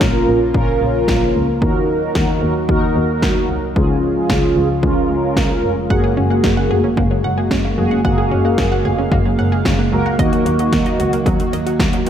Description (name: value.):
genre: synth-pop.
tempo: 112 BPM.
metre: 4/4.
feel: straight.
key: unclear.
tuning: A4 = 441 Hz.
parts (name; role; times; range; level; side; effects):
mellow synth brass; accompaniment; 0.0-12.1 s; Bb3 to Bb4; -19 LUFS; equal; chorus, phaser, tape echo.
chorused pulse-width pad; sustained chords; 0.0-12.1 s; Db3 to F5; -21 LUFS; right 1 dB; none.
dark double bass; bass; 0.0-12.1 s; F1 to Eb2; -20 LUFS; equal; none.
80s electronic pad drums; drums; 0.0-12.1 s; hi-hat, kick drum, snare drum; -19 LUFS; equal; none.
analog pluck; arpeggios; 5.9-12.1 s; Eb3 to Gb5; -22 LUFS; right 1 dB; chorus, phaser, tape echo.
room: moderate plate reverb, RT60 1.9 s.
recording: echo-heavy mix.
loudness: -14 LUFS.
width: side -9 dB against mid.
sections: 0.0-5.9 A section; 5.9-12.1 B section.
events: none.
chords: 0.0 Bbm; 1.6 Ebm; 3.8 Db; 5.9 Gbadd9; 10.2 Ebm.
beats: 0.01 0.55 1.08 | 1.62 2.15 2.69 3.23 | 3.76 4.30 4.83 5.37 | 5.90 6.44 6.98 7.51 | 8.05 8.58 9.12 9.65 | 10.19 10.73 11.26 11.80.